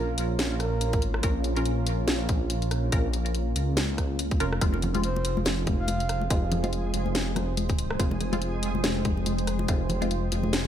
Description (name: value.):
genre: deep dubstep.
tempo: 142 BPM.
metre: 4/4.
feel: swing 58% on 16ths, half-time.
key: F minor.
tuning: A4 = 438 Hz.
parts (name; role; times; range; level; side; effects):
breathy flute-like synth lead; melody; 0.0-1.0, 5.0-6.2 s; Bb4 to F5; -35 LUFS; right 2 dB; chorus, vintage 12-bit sampler grit, dub echo.
deep dark ambient pad; sustained chords; 0.0-10.7 s; Ab3 to G5; -34 LUFS; right 1 dB; chorus, built-in reverb.
filtered dub chord stab; stabs; 0.0-10.7 s; Ab3 to Bb4; -35 LUFS; equal; phaser, cassette tape, dub echo.
dark detuned saw bass; bass; 0.0-10.7 s; F1 to Db2; -28 LUFS; equal; none.
garage drum kit; drums; 0.2-10.6 s; hi-hat, rim click, snare drum; -30 LUFS; equal; studio reverb.
electronic kick drum; drums; 0.9-9.8 s; none; -26 LUFS; equal; studio reverb.
backwards swelling texture; texture; 5.4-10.7 s; Ab3 to Ab4; -37 LUFS; equal; built-in reverb.
congas; percussion; 4.7-10.7 s; none; -33 LUFS; left 4 dB; dub echo.
room: light reverb.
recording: none.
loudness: -24 LUFS.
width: side -10 dB against mid.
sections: 0.0-10.7 A section.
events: drum fill 4.4.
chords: 0.0 Bbm; 4.6 Fm.